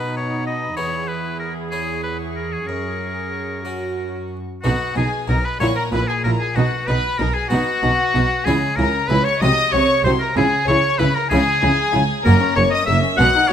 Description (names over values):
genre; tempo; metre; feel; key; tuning
classical, baroque-style concerto movement with solo episodes; 63 BPM (dotted quarters); 6/8; straight; B major; A4 = 441 Hz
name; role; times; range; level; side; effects
bright oboe; melody; 0.0-13.5 s; F#4 to F#5; -22 LUFS; left 2 dB; none
warm studio violin section; melody; 0.0-13.5 s; F#5 to F#6; -26 LUFS; left 4 dB; none
rich chamber violin section; second line; 0.0-13.5 s; C#4 to F#5; -25 LUFS; equal; none
harpsichord; accompaniment; 0.0-13.5 s; E2 to G#4; -29 LUFS; left 1 dB; none
warm chamber viola section; accompaniment; 0.0-13.5 s; A#3 to G#4; -27 LUFS; equal; none
warm chamber cello section; bass; 0.0-13.5 s; E2 to C#3; -24 LUFS; right 1 dB; none
dark studio double bass section; bass; 4.6-13.5 s; F#1 to C#2; -22 LUFS; right 2 dB; none
room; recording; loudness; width
light reverb; close, detailed microphones; -16 LUFS; side -9 dB against mid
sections
0.0-4.6 A section; 4.6-13.5 B section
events
none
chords
0.0 B; 0.8 E; 1.7 C#m/E; 2.7 F#; 4.6 B; 5.6 F#7/A#; 6.6 B; 8.5 C#m; 9.4 G#7/B#; 10.4 C#m; 12.2 F#